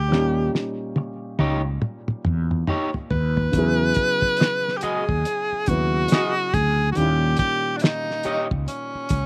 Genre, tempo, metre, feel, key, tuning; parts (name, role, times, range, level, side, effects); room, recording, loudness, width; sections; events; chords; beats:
R&B, neo-soul; 70 BPM; 4/4; swing 62% on 16ths; A4 = 441 Hz
breathy tenor saxophone; melody; 0.0-9.3 s; C#4 to B4; -26 LUFS; equal
dark upright piano; accompaniment; 0.0-9.3 s; A#2 to B4; -31 LUFS; equal
mellow fretless electric bass; bass; 0.0-9.3 s; C#2 to E2; -25 LUFS; equal
cloth-damped thuddy drum kit; drums; 0.1-9.3 s; hi-hat, kick drum, snare drum, toms; -25 LUFS; equal
electric guitar at the edge of break-up; second line; 1.0-8.5 s; D#4 to D#5; -28 LUFS; equal; slapback echo
little or no reverb; recorded outdoors, with no room sound; -22 LUFS; mono
0.0-3.5 A section; 3.5-9.3 B section
drum fill 0.1-3.5
0.1 D#7; 3.5 Emaj9; 7.0 D#7
| 0.10 0.96 1.82 2.67 | 3.53 4.39 5.25 6.10 | 6.96 7.82 8.67